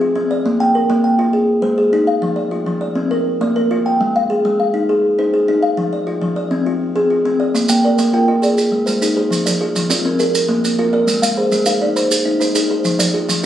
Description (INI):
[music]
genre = southern african traditional, mbira-style interlocking cycle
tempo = 136 BPM (dotted quarters)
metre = 12/8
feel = straight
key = Bb mixolydian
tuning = A4 = 440 Hz
[part]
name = kalimba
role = arpeggios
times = 0.0-13.5 s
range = F3 to G5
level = -15 LUFS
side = left 1 dB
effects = none
[part]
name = maracas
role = percussion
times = 7.6-13.4 s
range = none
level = -21 LUFS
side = right 3 dB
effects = none
[part]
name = kalimba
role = arpeggios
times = 7.7-13.5 s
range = F3 to Eb5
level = -18 LUFS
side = right 2 dB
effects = none
[sound]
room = moderate small room reverb, RT60 0.6 s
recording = recorded on a phone in the room, studio reverb, compression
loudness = -14 LUFS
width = side -11 dB against mid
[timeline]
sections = 0.0-7.5 A section; 7.5-13.5 A section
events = none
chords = 0.5 Bb; 1.3 Ab; 2.2 F5; 3.1 Bb; 4.0 Ab; 5.8 Fm; 7.5 Bb; 8.4 Ab; 9.3 Fm; 10.2 Bb; 11.1 Ab; 12.8 Fm